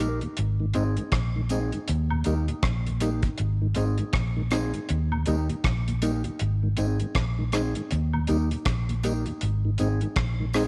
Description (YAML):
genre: roots reggae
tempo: 80 BPM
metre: 4/4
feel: swing 60% on 16ths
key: unclear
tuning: A4 = 438 Hz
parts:
  - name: mellow electric guitar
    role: accompaniment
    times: 0.0-10.7 s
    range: Bb3 to Bb4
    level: -34 LUFS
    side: equal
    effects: tape echo
  - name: mellow tonewheel organ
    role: accompaniment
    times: 0.0-10.6 s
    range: Eb2 to Eb4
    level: -35 LUFS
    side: equal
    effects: chorus vibrato, slow rotary speaker
  - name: vintage muted fingered electric bass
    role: bass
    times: 0.0-10.7 s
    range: Ab1 to Eb2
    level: -28 LUFS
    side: equal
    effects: none
  - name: tambourine and woodblock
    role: percussion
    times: 0.0-10.7 s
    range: none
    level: -42 LUFS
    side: equal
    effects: none
  - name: deep reggae drum kit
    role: drums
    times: 0.2-10.7 s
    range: hi-hat, kick drum, rim click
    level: -31 LUFS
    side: equal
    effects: none
room: light reverb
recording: none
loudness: -26 LUFS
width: mono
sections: 0.0-10.7 A section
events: none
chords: 0.4 Ab; 1.9 Eb; 3.4 Ab; 4.9 Eb; 6.4 Ab; 7.9 Eb; 9.4 Ab